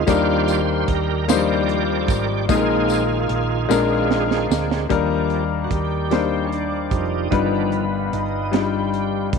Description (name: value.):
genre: slow gospel.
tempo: 50 BPM (dotted quarters).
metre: 6/8.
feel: straight.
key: Eb major.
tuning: A4 = 439 Hz.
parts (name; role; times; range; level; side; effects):
warm grand piano; accompaniment; 0.0-9.4 s; G2 to D5; -21 LUFS; left 10 dB; none.
bright tonewheel organ; sustained chords; 0.0-9.3 s; Eb3 to D5; -24 LUFS; right 13 dB; slow rotary speaker, overdrive, chorus vibrato.
hollow-body short-scale fingered electric bass; bass; 0.0-9.4 s; F1 to Eb2; -26 LUFS; right 1 dB; none.
tight funk drum kit; drums; 0.1-9.4 s; hi-hat, kick drum, snare drum; -24 LUFS; right 5 dB; none.
tambourine; percussion; 0.1-4.9 s; none; -32 LUFS; left 13 dB; none.
warm woodwind section; sustained chords; 4.9-9.4 s; D5 to D6; -32 LUFS; right 2 dB; none.
room: light reverb, small room reverb.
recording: 1960s-style stereo with parts hard left and right.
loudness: -18 LUFS.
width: side -5 dB against mid.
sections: 0.0-4.9 A section; 4.9-9.4 B section.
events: tonewheel organ solo 0.0-4.9, 4.9-9.4; drum fill 3.7-4.9.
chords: 0.1 Ebmaj7; 2.5 Bb7sus4; 3.7 Bb7; 4.9 Ebmaj7; 7.3 G7b13.